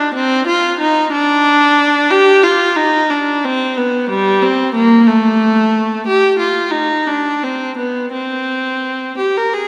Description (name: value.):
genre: classical, baroque-style suite movement for unaccompanied viola.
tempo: 60 BPM (dotted quarters).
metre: 6/8.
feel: uneven beats, rubato.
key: C minor.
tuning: A4 = 438 Hz.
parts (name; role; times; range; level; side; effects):
rich viola; solo; 0.0-9.7 s; G3 to Bb4; -14 LUFS; equal; none.
room: wet church reverb, RT60 3.0 s.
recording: recorded in a church or concert hall.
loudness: -14 LUFS.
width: mono.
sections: 0.0-9.7 A section.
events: none.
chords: none.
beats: | 0.14 1.12 | 2.09 3.08 | 4.07 5.06 | 6.05 7.06 | 8.11 9.18.